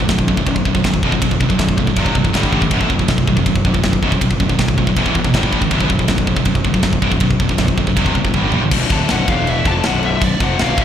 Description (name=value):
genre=heavy metal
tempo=160 BPM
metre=4/4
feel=straight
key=B phrygian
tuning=A4 = 440 Hz
part: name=high-gain distorted guitar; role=riff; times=0.0-10.8 s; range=B1 to G3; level=-20 LUFS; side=left 9 dB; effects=distortion, slapback echo
part: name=scooped high-gain guitar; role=riff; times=0.0-8.7 s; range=B1 to G3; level=-19 LUFS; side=right 8 dB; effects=distortion
part: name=fuzz fingered electric bass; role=bass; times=0.0-10.8 s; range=B0 to A#1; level=-20 LUFS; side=equal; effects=overdrive
part: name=tight metal drum kit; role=drums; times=0.0-10.8 s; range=crash cymbal, kick drum, ride cymbal, snare drum, toms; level=-18 LUFS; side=equal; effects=none
part: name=high-gain lead guitar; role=melody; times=8.9-10.8 s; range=D5 to A5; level=-21 LUFS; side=equal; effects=distortion, slapback echo, ping-pong delay
room=light reverb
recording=live gig heard through the venue's PA, recital hall reverb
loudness=-13 LUFS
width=side -9 dB against mid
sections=0.0-8.7 A section; 8.7-10.8 B section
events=drum fill 8.3-8.7; lead electric guitar solo 8.7-10.8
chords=0.0 B5; 2.0 C5; 2.3 G5; 2.7 B5; 5.0 E5; 5.3 G5; 5.7 B5; 8.0 C5; 8.3 G5; 8.7 Bm; 9.3 E5; 9.7 B5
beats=0.09 0.47 0.84 | 1.22 1.59 1.97 2.34 | 2.72 3.09 3.47 3.84 | 4.22 4.59 4.97 5.34 | 5.72 6.09 6.47 6.84 | 7.22 7.59 7.97 8.34 | 8.72 9.09 9.47 9.84 | 10.22 10.59